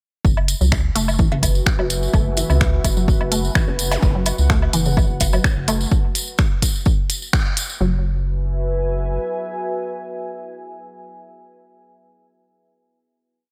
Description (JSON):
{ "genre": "minimal techno", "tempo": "127 BPM", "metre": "4/4", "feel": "swing 53% on 16ths", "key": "unclear", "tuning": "A4 = 440 Hz", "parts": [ { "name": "rubbery square bass", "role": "bass", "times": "0.2-9.2 s", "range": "F#1 to C#2", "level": "-23 LUFS", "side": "equal", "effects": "sidechain pumping" }, { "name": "electronic kick drum", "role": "drums", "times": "0.2-7.4 s", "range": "none", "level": "-21 LUFS", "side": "equal", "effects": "none" }, { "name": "deep dark ambient pad", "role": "texture", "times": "1.4-11.1 s", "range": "F#4 to G#5", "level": "-30 LUFS", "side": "equal", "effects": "chorus, built-in reverb, sidechain pumping" }, { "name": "tambourine", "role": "percussion", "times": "0.3-7.8 s", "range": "none", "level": "-30 LUFS", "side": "equal", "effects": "none" }, { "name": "woodblock and cowbell", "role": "percussion", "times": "0.4-5.8 s", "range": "none", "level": "-30 LUFS", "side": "equal", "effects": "none" }, { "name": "minimal click drum kit", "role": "drums", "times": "0.5-7.7 s", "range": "finger snaps, hi-hat", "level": "-25 LUFS", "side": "equal", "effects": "none" }, { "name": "resonant blip pluck", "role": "riff", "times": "0.6-8.0 s", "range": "C#3 to A3", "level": "-27 LUFS", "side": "equal", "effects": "phaser, analog chorus, cassette tape, sidechain pumping, delay" }, { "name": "zap", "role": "sound effects", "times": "3.9-4.0 s", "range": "none", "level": "-32 LUFS", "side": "equal", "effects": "none" } ], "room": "light reverb", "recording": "none", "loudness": "-19 LUFS", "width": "mono", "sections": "0.2-7.8 groove; 7.8-11.6 final chord", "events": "band accent 7.3", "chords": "0.2 F#7(no3); 7.8 F#9sus4", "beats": "| 0.25 0.72 1.19 1.66 | 2.14 2.61 3.08 3.55 | 4.03 4.50 4.97 5.44 | 5.92 6.39 6.86 7.33 | 7.80 8.28 8.75 9.22 | 9.70 10.17 10.64" }